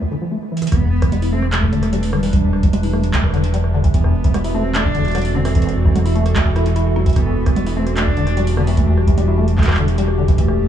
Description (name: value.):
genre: IDM.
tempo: 149 BPM.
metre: 4/4.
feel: straight.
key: E minor.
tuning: A4 = 440 Hz.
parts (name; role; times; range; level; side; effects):
deep acid bass; arpeggios; 0.0-10.6 s; E2 to E4; -22 LUFS; left 2 dB; lush chorus, vintage 12-bit sampler grit, dub echo.
electro analog drum machine; drums; 0.6-10.6 s; congas, handclaps, hi-hat, rim click; -26 LUFS; right 3 dB; tape echo.
dark cello; melody; 0.7-10.7 s; G3 to D4; -24 LUFS; right 1 dB; tape echo.
round analog bass; bass; 0.7-10.7 s; E1; -18 LUFS; equal; none.
electronic kick drum; drums; 0.7-10.5 s; none; -17 LUFS; right 1 dB; none.
hollow soft pad; sustained chords; 1.3-10.7 s; C3 to B4; -26 LUFS; equal; chorus, vintage 12-bit sampler grit.
room: little or no reverb.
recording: echo-heavy mix, small room ambience.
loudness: -14 LUFS.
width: side -10 dB against mid.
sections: 0.7-10.7 A section.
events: break 0.0-0.7; drum fill 0.5.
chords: 0.0 N.C.; 0.7 Cmaj7/E; 3.9 D9/E; 7.2 Em9.